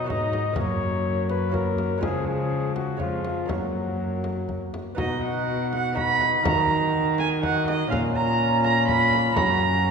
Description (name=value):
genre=classical, renaissance-style consort dance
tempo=123 BPM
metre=3/4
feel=straight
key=unclear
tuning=A4 = 440 Hz
part: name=mellow cornet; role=melody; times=0.0-9.9 s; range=F4 to Eb5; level=-32 LUFS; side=left 5 dB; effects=none
part: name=rich viola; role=second line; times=0.0-9.9 s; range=Ab3 to Cb6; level=-25 LUFS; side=right 4 dB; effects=none
part: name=lute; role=accompaniment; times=0.0-9.9 s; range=F2 to Gb4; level=-34 LUFS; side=right 4 dB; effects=none
part: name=mellow bassoon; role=accompaniment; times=0.0-9.9 s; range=F3 to Eb4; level=-30 LUFS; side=left 5 dB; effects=none
part: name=dark cello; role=bass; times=0.0-9.9 s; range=F2 to Eb3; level=-27 LUFS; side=equal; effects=none
part: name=frame drum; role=percussion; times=0.1-9.6 s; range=none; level=-33 LUFS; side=left 2 dB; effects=none
room=wet concert hall reverb, RT60 2.2 s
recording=recorded in a church or concert hall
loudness=-21 LUFS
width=side -5 dB against mid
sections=0.0-5.0 A section; 5.0-9.9 A section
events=none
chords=0.0 Cb; 0.6 Gb; 2.0 Db; 3.5 Gb; 5.0 Cb; 6.4 Ebm; 7.9 Bbm; 9.4 Gb